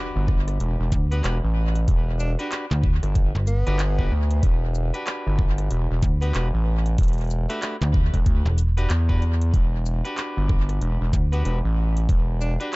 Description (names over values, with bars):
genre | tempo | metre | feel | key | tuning
glitch hop | 94 BPM | 4/4 | swing 61% on 16ths | E minor | A4 = 440 Hz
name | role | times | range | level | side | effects
clean electric guitar | stabs | 0.0-12.8 s | D4 to B4 | -34 LUFS | equal | sidechain pumping, tape echo
impact | sound effects | 0.0-1.9 s | none | barely audible | none | none
gritty driven synth bass | bass | 0.2-12.6 s | E1 to E2 | -22 LUFS | equal | overdrive
drum and bass drum kit | drums | 0.3-12.8 s | handclaps, hi-hat, rim click, shaker | -35 LUFS | equal | tape echo
electronic kick drum | drums | 0.3-12.2 s | none | -21 LUFS | equal | none
slap-like FM bass | bass | 0.9-11.4 s | E1 to D2 | -21 LUFS | equal | none
clear tenor saxophone | melody | 1.1-12.7 s | A3 to D4 | -35 LUFS | equal | tape echo
room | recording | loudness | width
digital ambience | echo-heavy mix, nothing above 7.8 kHz | -20 LUFS | side -24 dB against mid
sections
0.0-12.8 A section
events
impact 0.0-1.9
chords
0.0 Em9